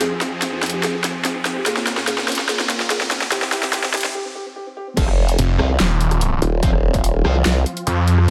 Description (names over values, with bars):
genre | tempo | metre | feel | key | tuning
heavy wobble dubstep | 145 BPM | 4/4 | half-time | unclear | A4 = 441 Hz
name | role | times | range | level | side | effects
felt-muted upright piano | melody | 0.0-4.9 s | C4 to Ab4 | -30 LUFS | equal | vintage 12-bit sampler grit, digital delay
supersaw chords | sustained chords | 0.0-8.3 s | F2 to Ab4 | -30 LUFS | equal | sidechain pumping, low-pass filter
dubstep drum kit | drums | 0.0-8.3 s | crash cymbal, handclaps, hi-hat, rim click, snare drum | -24 LUFS | equal | high-pass filter on snare, high-pass filter on hats, high-pass filter on cymbals
riser | sound effects | 0.1-4.1 s | none | -31 LUFS | equal | none
fuzz guitar | stabs | 5.0-8.3 s | F3 to F4 | -31 LUFS | equal | distortion, digital delay
formant-sweep wobble bass | bass | 5.0-7.6 s | Eb1 to C2 | -20 LUFS | equal | chorus, overdrive
electronic kick drum | drums | 5.0-7.0 s | none | -21 LUFS | equal | distortion
snarling distorted saw bass | bass | 5.4-8.3 s | Eb1 to F2 | -18 LUFS | equal | distortion, overdrive
room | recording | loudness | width
light reverb, digital ambience | high-pass filter | -19 LUFS | mono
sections
0.0-5.0 A section; 5.0-8.3 B section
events
build-up 0.0-5.0; drum fill 0.0-4.1; riser 0.1-4.1; filter sweep on supersaw synth 0.0-5.0; break 4.1-5.0; drop 5.0-8.3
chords
0.0 Fm; 1.7 Bbm; 3.3 C; 5.0 F5